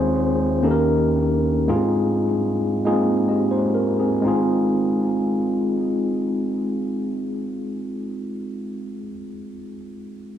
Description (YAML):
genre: gospel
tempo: 39-61 BPM (dotted quarters)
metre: 6/8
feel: straight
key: Ab major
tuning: A4 = 440 Hz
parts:
  - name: bright tine electric piano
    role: solo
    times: 0.0-10.4 s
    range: Ab1 to Eb5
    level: -20 LUFS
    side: equal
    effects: medium stereo tremolo, cassette tape, tape echo
room: moderate lush hall reverb, RT60 2.4 s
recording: home recording on cassette, small room ambience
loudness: -19 LUFS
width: side -10 dB against mid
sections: 0.0-4.3 A section; 4.3-10.4 B section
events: slowing down 0.0-4.3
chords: 0.0 Ab/Eb; 0.6 Eb7; 1.7 Ab6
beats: 0.64 | 1.69 2.87 | 4.25 5.78 | 7.31 8.84